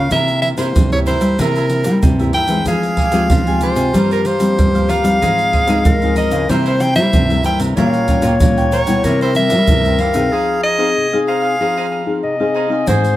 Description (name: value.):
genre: samba and choro.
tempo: 94 BPM.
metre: 4/4.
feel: straight.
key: F minor.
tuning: A4 = 440 Hz.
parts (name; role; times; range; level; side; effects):
bright soprano saxophone; melody; 0.0-12.2 s; Bb4 to G5; -18 LUFS; equal; none.
cavaquinho; accompaniment; 0.0-13.2 s; Eb4 to Ab5; -25 LUFS; right 6 dB; none.
nylon-string guitar; accompaniment; 0.0-13.2 s; G2 to Ab4; -21 LUFS; left 4 dB; none.
nylon-string guitar; bass; 0.0-13.2 s; Ab2 to Ab3; -18 LUFS; equal; none.
egg shaker, surdo and pandeiro; percussion; 0.1-13.2 s; none; -18 LUFS; right 1 dB; none.
mellow clarinet; second line; 2.7-13.2 s; F4 to Eb5; -21 LUFS; left 4 dB; none.
room: light reverb.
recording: close, detailed microphones.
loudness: -12 LUFS.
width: side -14 dB against mid.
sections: 0.0-12.9 A section.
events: break 10.3-12.9.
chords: 0.1 C7; 2.7 Fmadd9; 3.9 C7sus4/G; 5.2 Fm7/Ab; 6.5 C7; 7.8 Gm7b5/Bb; 9.0 C; 10.3 Fm7.